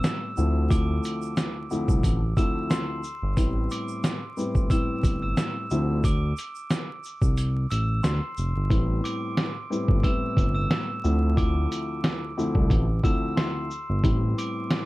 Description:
hip hop, boom-bap hip-hop; 90 BPM; 4/4; swing 54% on 16ths; A minor; A4 = 440 Hz
glockenspiel with rubber mallets; melody; 0.0-14.9 s; C6 to E7; -34 LUFS; right 2 dB; high-pass filter, low-pass filter, plate reverb, tape echo
dark baby grand piano; accompaniment; 0.0-14.8 s; D2 to E4; -29 LUFS; left 2 dB; cassette tape, high-pass filter, low-pass filter
lo-fi sampler-style drum kit; drums; 0.0-14.9 s; hi-hat, kick drum, shaker, snare drum; -25 LUFS; equal; vintage 12-bit sampler grit
tube shaker; percussion; 0.0-8.5 s; -47 LUFS; right 12 dB
smooth synth bass; bass; 0.4-14.3 s; F1 to D2; -25 LUFS; equal
light reverb; dark, warm production, vinyl crackle; -23 LUFS; side -19 dB against mid
0.0-8.7 A section; 8.7-14.9 B section
kick muted 7.4-8.7
0.4 Dm9; 3.4 Am9; 5.7 Dm9; 8.7 Am9; 11.0 Dm9; 14.0 Am9
0.04 | 0.70 1.37 2.04 2.71 | 3.37 4.04 4.71 5.37 | 6.04 6.71 7.37 8.04 | 8.71 9.37 10.04 10.71 | 11.37 12.04 12.71 13.37 | 14.04 14.71

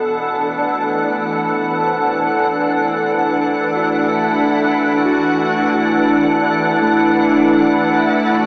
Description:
ambient; 70 BPM; 4/4; straight; A4 = 439 Hz
bright cello; melody; 0.0-8.5 s; A3 to F#4; -30 LUFS; equal; diffuse ambient delay
soft additive organ-like pad; sustained chords; 0.0-8.5 s; B2 to F#5; -17 LUFS; equal; ensemble chorus, built-in reverb
muted felt-like synth keys; arpeggios; 0.0-8.5 s; A3 to B5; -32 LUFS; equal
analog drone; drone; 0.7-8.5 s; A3 to E4; -24 LUFS; equal; chorus
wet huge ambient reverb, RT60 8.1 s; small speaker sound; -16 LUFS; mono
0.0-8.5 A section
fade-in on cello 0.0-8.5
0.0 Dadd9
0.66 1.51 2.37 | 3.23 4.09 4.94 5.80 | 6.66 7.51 8.37

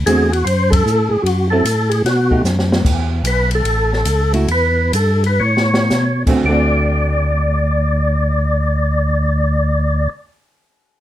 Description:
soul jazz organ trio; 106-151 BPM; 4/4; swing 66% on 8ths; D mixolydian; A4 = 440 Hz
tonewheel organ; bass; 0.0-10.1 s; A1 to B2; -16 LUFS; equal; overdrive, chorus vibrato, slow rotary speaker
percussive tonewheel organ; melody; 0.1-10.1 s; F#4 to D5; -18 LUFS; left 1 dB; slow rotary speaker, overdrive, chorus vibrato
hollow-body jazz guitar; accompaniment; 0.1-10.2 s; D3 to A4; -19 LUFS; right 2 dB
open jazz drum kit; drums; 0.1-6.4 s; crash cymbal, hi-hat, kick drum, ride cymbal, snare drum; -21 LUFS; equal
moderate studio reverb, RT60 0.5 s; -13 LUFS; side -12 dB against mid
0.0-2.8 A section; 2.8-6.5 B section; 6.5-11.0 C section
band accent 0.6; drum fill 2.4-2.8, 5.4-5.9; slowing down 2.8-6.5
0.0 D7; 1.2 F#m7b5; 2.0 B7b13; 2.8 E5; 3.6 A6; 4.5 Bsus4; 5.4 A69; 6.5 D7
0.05 0.45 0.84 | 1.24 1.64 2.04 2.43 | 2.83 3.23 3.64 4.05 | 4.49 4.94 5.42 5.92 | 6.47 7.04 7.61 8.17 | 8.74 9.31 9.88

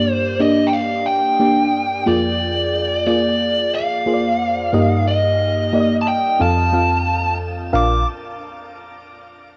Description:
pop; 90 BPM; 4/4; straight; Bb major; A4 = 440 Hz
biting lead guitar; melody; 0.0-8.1 s; D5 to D6; -22 LUFS; equal; overdrive, cassette tape, shimmer reverb
mellow FM electric piano; accompaniment; 0.0-8.0 s; Bb1 to F5; -21 LUFS; equal; chorus, phaser, cassette tape, shimmer reverb
wet studio reverb, RT60 0.6 s; home recording on cassette; -18 LUFS; mono
0.0-7.7 A section; 7.7-9.6 B section
0.0 Gm; 2.1 Bb7/F; 4.7 Eb/G; 6.4 F; 7.7 Bb
0.40 1.07 1.74 | 2.40 3.07 3.74 4.40 | 5.07 5.74 6.40 7.07 | 7.74

